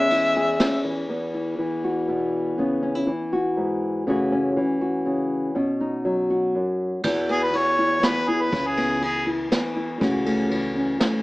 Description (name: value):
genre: acoustic folk duo or small band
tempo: 121 BPM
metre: 3/4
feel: straight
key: E major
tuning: A4 = 439 Hz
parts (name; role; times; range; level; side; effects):
- warm harmonica; melody; 0.0-0.9, 7.3-9.3 s; G#4 to E5; -21 LUFS; left 1 dB; none
- mandolin; second line; 0.0-0.8 s; G#3; -32 LUFS; right 1 dB; none
- nylon-string guitar; accompaniment; 0.0-11.2 s; E2 to G#4; -22 LUFS; left 1 dB; none
- upright bass; bass; 0.0-0.6, 7.0-11.0 s; C#2 to E2; -35 LUFS; equal; none
- vintage brush drum kit; drums; 0.1-0.7, 7.0-11.1 s; crash cymbal, kick drum, ride cymbal, snare drum; -28 LUFS; equal; none
room: moderate studio reverb, RT60 0.9 s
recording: small speaker sound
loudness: -21 LUFS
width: side -20 dB against mid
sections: 0.0-1.1 A section; 1.1-7.0 B section; 7.0-11.2 C section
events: harmonica solo 7.0-11.2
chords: 0.0 E6; 1.1 Esus2; 2.6 C#m7; 4.1 A6/C#; 5.6 Badd9; 7.0 Esus2; 8.5 C#m7; 10.0 A6/C#